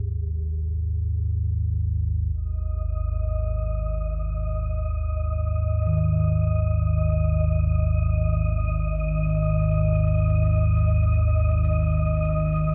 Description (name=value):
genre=dark ambient drone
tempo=free time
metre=none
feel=none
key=unclear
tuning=A4 = 440 Hz
part: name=gamelan-type bronze metallophone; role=arpeggios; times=0.0-12.7 s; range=D#3 to G#4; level=-34 LUFS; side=equal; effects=tape echo
part: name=analog drone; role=drone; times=0.0-12.7 s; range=G#1 to D#2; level=-24 LUFS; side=equal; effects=subtle chorus
part: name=wind-like tuned noise texture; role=texture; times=2.7-12.7 s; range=D#5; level=-35 LUFS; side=equal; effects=built-in reverb
room=light reverb, small room ambience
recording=dark, warm production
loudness=-24 LUFS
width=mono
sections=0.0-2.3 A section; 2.3-12.7 B section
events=filter sweep on synth drone 0.0-2.3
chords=0.0 G#5